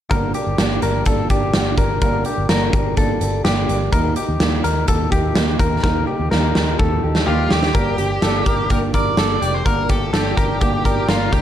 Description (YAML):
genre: jangly indie pop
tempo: 126 BPM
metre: 4/4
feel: straight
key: G minor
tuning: A4 = 440 Hz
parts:
  - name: fingerpicked old ladder-braced acoustic guitar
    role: accompaniment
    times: 0.1-11.4 s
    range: G2 to G4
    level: -24 LUFS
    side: right 4 dB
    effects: none
  - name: direct-recorded clean electric guitar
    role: arpeggios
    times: 0.1-11.4 s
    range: G4 to Bb4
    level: -23 LUFS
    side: left 4 dB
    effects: harmonic tremolo, slapback echo
  - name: vintage muted fingered electric bass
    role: bass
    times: 0.1-11.4 s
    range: F1 to Eb2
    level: -22 LUFS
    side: equal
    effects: none
  - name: big rock drum kit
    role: drums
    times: 0.1-11.4 s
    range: hi-hat, kick drum, snare drum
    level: -19 LUFS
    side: equal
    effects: none
  - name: high-gain lead guitar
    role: melody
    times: 7.3-11.4 s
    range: F4 to D5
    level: -23 LUFS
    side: right 2 dB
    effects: distortion, slapback echo
room: light reverb, small room ambience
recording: dark, warm production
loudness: -16 LUFS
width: side -10 dB against mid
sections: 0.1-7.7 A section; 7.7-11.4 B section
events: drum fill 5.8-7.7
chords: 0.1 Gm; 3.9 Eb; 7.7 Gm